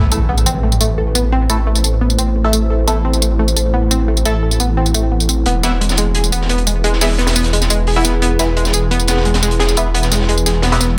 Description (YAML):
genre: dark technical drum and bass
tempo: 174 BPM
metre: 4/4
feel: straight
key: unclear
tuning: A4 = 439 Hz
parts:
  - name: deep dark ambient pad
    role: sustained chords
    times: 0.1-10.9 s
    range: A3 to C5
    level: -25 LUFS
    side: equal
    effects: chorus, built-in reverb, vintage 12-bit sampler grit
  - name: phased detuned saw bass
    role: bass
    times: 0.0-11.0 s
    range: E1 to A1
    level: -18 LUFS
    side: equal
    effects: phaser, overdrive, high-pass filter
  - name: impact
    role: sound effects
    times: 0.0-1.3 s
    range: none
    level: -22 LUFS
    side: equal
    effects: none
  - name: analog pluck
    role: arpeggios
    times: 0.1-10.9 s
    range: G#3 to A4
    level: -23 LUFS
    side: equal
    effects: chorus, digital delay
  - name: band-passed chord stab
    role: stabs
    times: 0.1-10.8 s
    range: E3 to A4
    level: -24 LUFS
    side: equal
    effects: phaser, lush chorus, cassette tape, digital delay
  - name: tambourine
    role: drums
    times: 0.1-10.9 s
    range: none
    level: -20 LUFS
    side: equal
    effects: high-pass filter on hats, high-pass filter on snare, high-pass filter on toms, high-pass filter on perc, high-pass filter on room
  - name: crunchy breakbeat drum kit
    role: drums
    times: 5.5-10.9 s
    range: hi-hat, snare drum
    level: -24 LUFS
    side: equal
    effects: high-pass filter on hats, high-pass filter on snare, high-pass filter on room
room: light reverb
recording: dense, heavily limited modern master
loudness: -15 LUFS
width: mono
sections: 0.0-11.0 A section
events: impact 0.0-1.3; filter sweep on synth arpeggio sound 0.0-11.0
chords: 0.0 Amadd9; 5.5 E